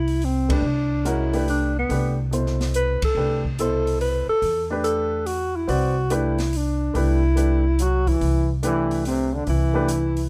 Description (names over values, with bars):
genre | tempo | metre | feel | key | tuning
modal jazz | 143 BPM | 3/4 | swing 67% on 8ths | C lydian | A4 = 443 Hz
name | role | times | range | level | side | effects
dark alto saxophone | melody | 0.0-10.3 s | B3 to B4 | -26 LUFS | equal | none
upright bass | bass | 0.0-10.3 s | C2 to E2 | -26 LUFS | equal | none
open jazz drum kit | drums | 0.1-10.2 s | hi-hat, kick drum, ride cymbal, snare drum | -34 LUFS | equal | none
warm upright piano | accompaniment | 0.5-9.9 s | B2 to D5 | -30 LUFS | equal | none
bright trombone | second line | 7.8-10.3 s | C3 to F#3 | -30 LUFS | equal | none
room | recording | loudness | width
little or no reverb | close, detailed microphones | -22 LUFS | mono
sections
0.0-10.3 A section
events
band accent 0.4, 3.0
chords
0.0 Cmaj7; 3.2 Am7/C; 8.2 Cmaj7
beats
0.22 | 0.64 1.06 1.48 | 1.90 2.33 2.75 | 3.17 3.59 4.01 | 4.43 4.85 5.27 | 5.69 6.11 6.53 | 6.95 7.37 7.79 | 8.21 8.63 9.05 | 9.47 9.89